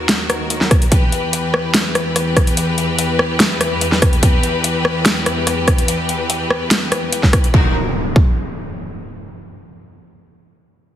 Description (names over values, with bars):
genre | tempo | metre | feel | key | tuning
heavy wobble dubstep | 145 BPM | 4/4 | half-time | unclear | A4 = 440 Hz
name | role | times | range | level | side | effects
clear symphonic string section | sustained chords | 0.0-7.7 s | Eb2 to B4 | -19 LUFS | left 2 dB | sidechain pumping
dubstep drum kit | drums | 0.1-7.5 s | hi-hat, rim click, snare drum | -17 LUFS | equal | studio reverb
electronic kick drum | drums | 0.7-8.2 s | none | -13 LUFS | equal | studio reverb
impact | sound effects | 7.5-9.2 s | none | -23 LUFS | equal | none
room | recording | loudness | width
light reverb, digital ambience | heavily compressed radio sound | -13 LUFS | side -11 dB against mid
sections
0.0-7.5 A section; 7.5-9.2 B section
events
none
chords
0.0 Ebm; 0.9 Em; 7.5 Ebm